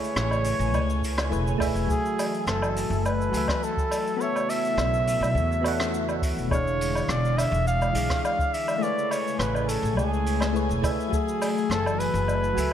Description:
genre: sunset chillout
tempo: 104 BPM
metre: 4/4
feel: straight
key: F# minor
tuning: A4 = 440 Hz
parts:
  - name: warm flugelhorn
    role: melody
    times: 0.0-12.7 s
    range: G#4 to F5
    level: -28 LUFS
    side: equal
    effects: ping-pong delay
  - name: soft electric-piano-like synth keys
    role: accompaniment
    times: 0.0-12.7 s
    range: E3 to G#5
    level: -30 LUFS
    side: moving between left 4 dB and right 3 dB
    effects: chorus, auto-pan, digital delay
  - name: airy breathy pad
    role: sustained chords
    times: 0.0-12.7 s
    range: C#3 to G#5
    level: -32 LUFS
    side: left 3 dB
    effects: chorus, phaser
  - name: jazz brush drum kit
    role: drums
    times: 0.0-12.7 s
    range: cabasa, hi-hat, rim click, woodblock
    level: -31 LUFS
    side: equal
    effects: gated reverb
  - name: upright bass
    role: bass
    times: 0.2-12.7 s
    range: E1 to E2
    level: -27 LUFS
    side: equal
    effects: none
  - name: electronic kick drum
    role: drums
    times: 1.0-11.2 s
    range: none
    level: -29 LUFS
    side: equal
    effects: none
room: light reverb, small room ambience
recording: bright 1980s-style digital production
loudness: -23 LUFS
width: side -9 dB against mid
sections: 0.0-12.7 A section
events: none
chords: 0.0 Amaj7; 1.9 F#m9; 4.2 B9sus4; 6.5 E7b9; 8.8 Amaj7; 11.1 F#m9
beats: 0.16 0.74 1.32 | 1.90 2.47 3.05 3.62 | 4.20 4.78 5.36 5.93 | 6.51 7.09 7.66 8.24 | 8.82 9.39 9.97 10.55 | 11.12 11.70 12.28

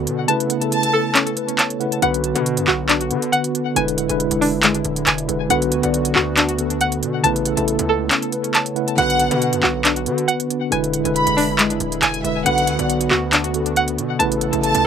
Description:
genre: hip hop, trap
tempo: 138 BPM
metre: 4/4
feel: half-time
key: B dorian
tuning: A4 = 440 Hz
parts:
  - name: mellow tine electric piano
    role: accompaniment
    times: 0.0-14.9 s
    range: C#3 to F#5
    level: -21 LUFS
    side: right 1 dB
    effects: medium stereo tremolo, low-pass filter
  - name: warm analog pad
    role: sustained chords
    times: 0.0-14.9 s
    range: C#3 to A4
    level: -29 LUFS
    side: equal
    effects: chorus
  - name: string-like resonator pluck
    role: arpeggios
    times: 0.0-14.9 s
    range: G#3 to A5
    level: -21 LUFS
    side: left 1 dB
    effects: chorus, low-pass filter, ping-pong delay
  - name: distorted 808-style bass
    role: bass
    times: 0.0-14.9 s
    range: D1 to D3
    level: -27 LUFS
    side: equal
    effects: distortion
  - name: trap drum kit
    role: drums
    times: 0.1-14.8 s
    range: handclaps, hi-hat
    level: -19 LUFS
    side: right 1 dB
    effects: none
  - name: warm studio violin section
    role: second line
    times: 0.7-1.1, 9.0-14.9 s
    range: E5 to B5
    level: -22 LUFS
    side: equal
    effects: ping-pong delay
room: light reverb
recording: none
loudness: -16 LUFS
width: side -8 dB against mid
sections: 0.0-2.0 A section; 2.0-14.9 A section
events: kick muted 0.3-2.0, 8.1-9.0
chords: 0.3 Aadd9; 2.0 Bm; 3.8 E7; 5.5 Bm; 7.2 Aadd9; 9.0 Bm; 10.7 E7; 12.5 Bm; 14.2 Aadd9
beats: | 0.28 0.72 1.15 1.59 | 2.02 2.46 2.89 3.33 | 3.76 4.20 4.63 5.07 | 5.50 5.94 6.37 6.81 | 7.24 7.68 8.11 8.54 | 8.98 9.41 9.85 10.28 | 10.72 11.15 11.59 12.02 | 12.46 12.89 13.33 13.76 | 14.20 14.63

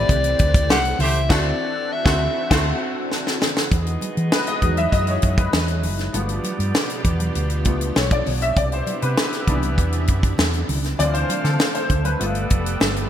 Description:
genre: polished 1980s jazz-funk pop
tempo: 99 BPM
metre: 4/4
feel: straight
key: unclear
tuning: A4 = 440 Hz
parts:
  - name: mellow soprano saxophone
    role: melody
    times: 0.0-2.5 s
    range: D5 to F#5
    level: -23 LUFS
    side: left 2 dB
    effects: digital delay
  - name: bright baby grand piano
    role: accompaniment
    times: 0.0-13.1 s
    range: E3 to E5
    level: -26 LUFS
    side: left 2 dB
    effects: ensemble chorus
  - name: string machine, violins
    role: sustained chords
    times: 0.0-13.1 s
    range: B2 to F5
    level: -31 LUFS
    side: right 1 dB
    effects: ensemble chorus
  - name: hollow-body short-scale fingered electric bass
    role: bass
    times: 0.0-13.0 s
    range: F1 to E3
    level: -22 LUFS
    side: equal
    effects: none
  - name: tight funk drum kit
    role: drums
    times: 0.1-13.1 s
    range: crash cymbal, hi-hat, kick drum, snare drum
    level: -21 LUFS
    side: equal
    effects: gated reverb
  - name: congas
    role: percussion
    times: 0.1-12.9 s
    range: none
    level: -34 LUFS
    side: right 2 dB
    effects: none
  - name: mellow horn section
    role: second line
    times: 0.7-13.1 s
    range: A3 to F5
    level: -30 LUFS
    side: right 2 dB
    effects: digital delay
room: moderate plate reverb, RT60 2.1 s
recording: bright 1980s-style digital production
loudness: -18 LUFS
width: side -10 dB against mid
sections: 0.0-3.7 A section; 3.7-13.1 B section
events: band accent 1.3-3.7; drum fill 3.1-3.7; grand piano solo 3.7-13.1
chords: 0.0 Am7; 1.3 D9; 3.7 Emaj9; 6.1 G7; 8.6 Cmaj9; 11.0 Dm7; 12.2 G9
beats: 0.09 0.69 | 1.30 1.90 2.51 3.11 | 3.72 4.33 4.93 5.54 | 6.14 6.75 7.35 7.96 | 8.57 9.17 9.78 10.38 | 10.99 11.60 12.20 12.81

